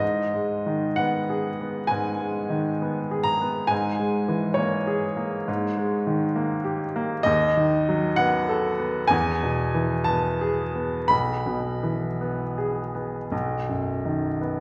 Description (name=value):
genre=classical, romantic nocturne for solo piano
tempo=54-68 BPM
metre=4/4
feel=rubato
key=G# minor, E major from 7.3 s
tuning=A4 = 440 Hz
part: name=clear baby grand piano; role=solo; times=0.0-14.6 s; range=B1 to B5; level=-25 LUFS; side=equal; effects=none
room=wet recital hall reverb, RT60 1.5 s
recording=heard from further back in the room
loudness=-25 LUFS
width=mono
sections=0.0-14.6 A section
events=none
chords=0.0 G#m; 3.7 A#m7b5/G#; 5.5 D#/G#; 7.3 B7/D#; 9.1 E; 11.1 E/B; 13.3 B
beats=| 0.01 1.00 1.92 2.82 | 3.72 4.60 5.49 6.37 | 7.27 8.20 9.13 10.08 | 11.12 12.21 13.32 14.41